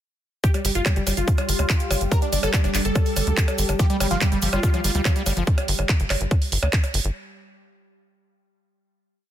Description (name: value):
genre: psychedelic trance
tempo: 143 BPM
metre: 4/4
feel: straight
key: unclear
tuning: A4 = 440 Hz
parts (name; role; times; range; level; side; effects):
- supersaw stab; melody; 0.4-5.4 s; G3 to Bb4; -28 LUFS; equal; phaser, sidechain pumping, dub echo
- evolving wavetable pad; sustained chords; 1.2-5.5 s; G3 to G4; -31 LUFS; left 1 dB; chorus, built-in reverb, sidechain pumping
- electronic kick drum; drums; 0.4-6.8 s; none; -20 LUFS; equal; none
- techno drum kit; drums; 0.4-7.1 s; handclaps, hi-hat, percussion blips; -26 LUFS; right 2 dB; none
- cabasa; percussion; 0.4-5.5 s; none; -35 LUFS; left 4 dB; none
- tight sequencer bass; bass; 0.6-7.1 s; G1 to D2; -24 LUFS; equal; none
- screaming distorted acid line; riff; 3.8-5.4 s; F3 to G3; -30 LUFS; right 1 dB; distortion, chorus, auto-pan, sidechain pumping, dub echo
room: little or no reverb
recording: dense, heavily limited modern master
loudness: -19 LUFS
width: side -11 dB against mid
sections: 0.4-7.2 groove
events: none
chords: 0.4 G5